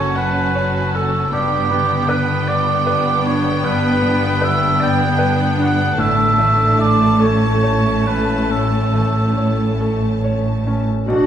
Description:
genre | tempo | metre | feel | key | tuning
cinematic | 45-52 BPM (dotted quarters) | 6/8 | rubato | unclear | A4 = 441 Hz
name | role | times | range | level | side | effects
clear studio violin section | melody | 0.0-11.3 s | F#5 to A5 | -28 LUFS | left 2 dB | none
rich studio violin section | second line | 0.0-11.3 s | C#4 to F#4 | -27 LUFS | left 3 dB | none
warm oboe | second line | 0.0-9.8 s | G4 to G5 | -19 LUFS | right 2 dB | none
bright grand piano | accompaniment | 0.0-11.3 s | B1 to F#5 | -24 LUFS | left 2 dB | none
rich studio viola section | accompaniment | 0.0-11.3 s | A3 to D4 | -24 LUFS | equal | none
concert harp | arpeggios | 0.0-11.3 s | F#2 to C#5 | -25 LUFS | left 4 dB | none
rich studio cello section | bass | 0.0-11.3 s | F#2 to B2 | -21 LUFS | right 2 dB | none
warm studio double bass section | bass | 0.0-11.3 s | F#1 to B1 | -24 LUFS | right 3 dB | none
hollow flute section | second line | 11.1-11.3 s | F#4 | -23 LUFS | right 7 dB | none
warm clarinet | second line | 11.1-11.3 s | F#4 | -16 LUFS | equal | none
mellow French horn section | sustained chords | 11.1-11.3 s | D4 | -20 LUFS | left 3 dB | none
room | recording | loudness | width
wet scoring stage reverb, RT60 1.5 s | minimal, uncompressed stereo recording, vinyl crackle | -14 LUFS | side -9 dB against mid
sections
0.0-11.1 A section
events
none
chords
0.0 F#m; 1.3 G; 6.0 A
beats
0.17 | 1.33 2.48 | 3.65 4.80 | 5.99 7.20 | 8.49 9.80 | 11.08

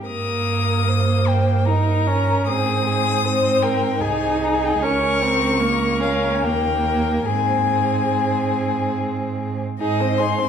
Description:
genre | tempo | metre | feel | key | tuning
classical, slow romantic movement for string quartet | 69-81 BPM | 3/4 | rubato | Ab major | A4 = 442 Hz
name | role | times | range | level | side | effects
rich violin | melody | 0.1-10.5 s | Eb5 to Eb6 | -23 LUFS | left 8 dB | none
rich violin | second line | 0.1-10.5 s | Ab4 to C5 | -24 LUFS | left 3 dB | none
rich viola | accompaniment | 0.1-10.5 s | Bb3 to Eb4 | -23 LUFS | right 3 dB | none
clear cello | bass | 0.1-10.5 s | C2 to Ab2 | -23 LUFS | right 4 dB | none
room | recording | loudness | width
wet recital hall reverb, RT60 1.6 s | recorded in a church or concert hall | -17 LUFS | side -8 dB against mid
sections
0.0-9.8 A section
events
none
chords
0.1 Eb/G; 2.5 Ab; 4.8 Bbm/Db; 6.4 Eb; 7.3 Ab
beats
| 0.08 0.89 1.67 | 2.48 3.24 4.00 | 4.82 5.61 6.42 | 7.27 8.13 8.97 | 9.81

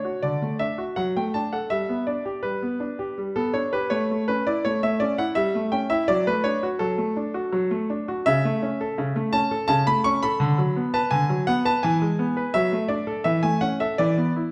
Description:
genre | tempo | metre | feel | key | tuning
classical-period piano sonatina | 83 BPM | 3/4 | rubato | D major, A major from 8.2 s | A4 = 438 Hz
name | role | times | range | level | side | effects
clear grand piano | solo | 0.0-14.5 s | C#3 to C#6 | -24 LUFS | equal | none
room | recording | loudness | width
wet recital hall reverb, RT60 1.4 s | recorded in a church or concert hall | -24 LUFS | mono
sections
0.0-14.5 A section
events
none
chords
0.0 D; 1.0 D/F#; 1.7 G; 3.9 A; 5.4 A7/G; 6.1 D/F#; 8.2 A/C#; 10.4 Bm/D; 11.8 E; 12.5 D/F#; 13.3 A/E; 14.0 E7(no3)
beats
0.24 0.97 | 1.71 2.44 3.17 | 3.91 4.63 5.35 | 6.08 6.79 7.51 | 8.24 8.96 9.68 | 10.40 11.11 11.83 | 12.55 13.27 14.00

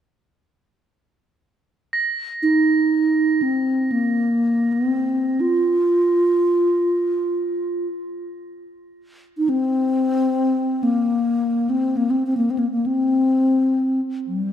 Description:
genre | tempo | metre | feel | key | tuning
world meditative, free-time meditation music | free time | none | none | unclear | A4 = 440 Hz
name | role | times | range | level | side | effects
crotales | texture | 1.9-9.9 s | Bb6 | -27 LUFS | right 3 dB | none
breathy mellow bass flute | melody | 2.4-14.5 s | G3 to F4 | -18 LUFS | equal | tape echo
room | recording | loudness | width
wet scoring stage reverb, RT60 1.6 s | dark, warm production | -18 LUFS | side -9 dB against mid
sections
1.6-14.5 A section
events
none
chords
none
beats
free time

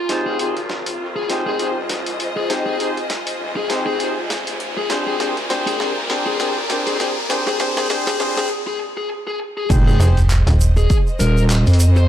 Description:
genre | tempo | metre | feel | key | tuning
glitch hop | 100 BPM | 4/4 | swing 57% on 16ths | F dorian | A4 = 440 Hz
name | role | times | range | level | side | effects
bluesy overdriven lead guitar | melody | 0.0-12.1 s | Ab4 to C5 | -25 LUFS | left 3 dB | distortion, dub echo
riser and sub drop | sound effects | 0.0-12.1 s | none | -27 LUFS | equal | none
bright studio string section | texture | 0.0-12.1 s | F4 to Ab5 | -28 LUFS | equal | sidechain pumping
brilliant horn section | stabs | 0.1-10.2 s | C4 to C5 | -24 LUFS | left 1 dB | sidechain pumping, low-pass filter, dub echo
wobble bass | bass | 0.1-12.1 s | Eb1 to F2 | -20 LUFS | equal | chorus, overdrive, high-pass filter
boom bap sampler-style drum kit | drums | 0.1-11.9 s | crash cymbal, handclaps, hi-hat, snare drum | -26 LUFS | equal | high-pass filter on hats, high-pass filter on snare, high-pass filter on cymbals
electronic kick drum | drums | 9.7-11.0 s | none | -15 LUFS | equal | none
tube shaker | percussion | 9.7-12.1 s | none | -30 LUFS | right 4 dB | none
slap-like FM bass | bass | 10.0-10.9 s | Eb1 to F1 | -13 LUFS | equal | none
room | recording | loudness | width
light reverb | dark, warm production, high-pass filter | -17 LUFS | side -11 dB against mid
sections
0.0-9.7 A section; 9.7-12.1 B section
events
build-up 0.0-9.7; riser 0.0-8.5; drum fill 0.1-8.5; break 8.5-9.7; drop 9.7-12.1; impact 9.7-12.1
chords
0.1 Fm7; 4.9 Bb7; 9.7 Fm7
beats
| 0.10 0.70 1.30 1.90 | 2.50 3.10 3.70 4.30 | 4.90 5.50 6.10 6.70 | 7.30 7.90 8.50 9.10 | 9.70 10.30 10.90 11.50

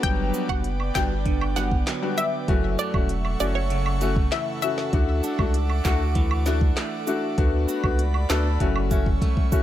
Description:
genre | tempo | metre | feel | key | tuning
dancehall | 98 BPM | 4/4 | straight | unclear | A4 = 441 Hz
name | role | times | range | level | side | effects
analog pluck | melody | 0.0-4.8 s | C#5 to G5 | -29 LUFS | left 2 dB | chorus, ping-pong delay
clear grand piano | accompaniment | 0.0-9.6 s | F#3 to F#4 | -28 LUFS | left 4 dB | none
airy breathy pad | sustained chords | 0.0-9.6 s | A4 to D6 | -34 LUFS | right 2 dB | chorus, sidechain pumping
clean electric guitar | arpeggios | 0.0-9.6 s | F#2 to A4 | -32 LUFS | right 4 dB | none
warm sub bass | bass | 0.0-9.2 s | E1 to D2 | -25 LUFS | equal | none
island pop drum kit | drums | 0.0-9.6 s | handclaps, hi-hat, kick drum, snare drum | -24 LUFS | equal | none
cabasa and woodblock | percussion | 0.3-9.6 s | none | -34 LUFS | right 7 dB | none
room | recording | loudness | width
little or no reverb | none | -21 LUFS | side -12 dB against mid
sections
0.0-9.6 A section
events
drum fill 8.6-9.6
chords
0.0 Gmaj7; 2.5 F#m7; 4.9 Dadd9; 7.4 Bm7; 8.6 F#m7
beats
| 0.03 0.64 1.26 1.87 | 2.48 3.09 3.71 4.32 | 4.93 5.54 6.16 6.77 | 7.38 7.99 8.60 9.22

